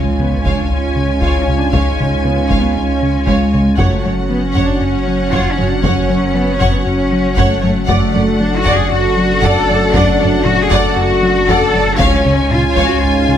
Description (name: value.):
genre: cinematic, hybrid orchestral and electronic film score.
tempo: 117 BPM.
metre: 4/4.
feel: straight.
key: F# harmonic minor.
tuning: A4 = 439 Hz.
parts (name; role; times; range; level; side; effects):
rich symphonic violin section; melody; 0.0-13.4 s; F#5 to G#5; -24 LUFS; left 3 dB; none.
rich studio violin section; second line; 0.0-13.0 s; C#5 to F#5; -23 LUFS; left 3 dB; none.
rich symphonic viola section; accompaniment; 0.0-13.0 s; C#5 to D5; -22 LUFS; equal; none.
hollow soft pad; sustained chords; 0.0-13.4 s; F#3 to C#5; -21 LUFS; equal; chorus.
mellow trombone section; sustained chords; 0.0-13.4 s; F#2 to C#4; -23 LUFS; right 4 dB; none.
warm French horn section; sustained chords; 0.0-13.4 s; F#4 to E#5; -24 LUFS; left 6 dB; none.
rubbery square bass; riff; 0.0-13.4 s; C#2 to F#3; -20 LUFS; left 2 dB; none.
saturated sub bass; bass; 0.0-13.4 s; F#1 to C#2; -21 LUFS; equal; none.
warm symphonic cello section; bass; 0.0-13.4 s; G#3 to A4; -18 LUFS; equal; none.
impact; sound effects; 0.0-1.7 s; none; -30 LUFS; equal; none.
taiko ensemble; drums; 0.4-13.2 s; none; -21 LUFS; equal; none.
rich studio double bass section; bass; 0.5-12.8 s; C#2 to F#2; -22 LUFS; right 4 dB; none.
room: light reverb.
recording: close, detailed microphones.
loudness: -11 LUFS.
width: side -10 dB against mid.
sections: 0.0-13.4 A section.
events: impact 0.0-1.7.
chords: 0.0 C#; 3.8 F#m; 7.9 D/F#; 12.0 C#.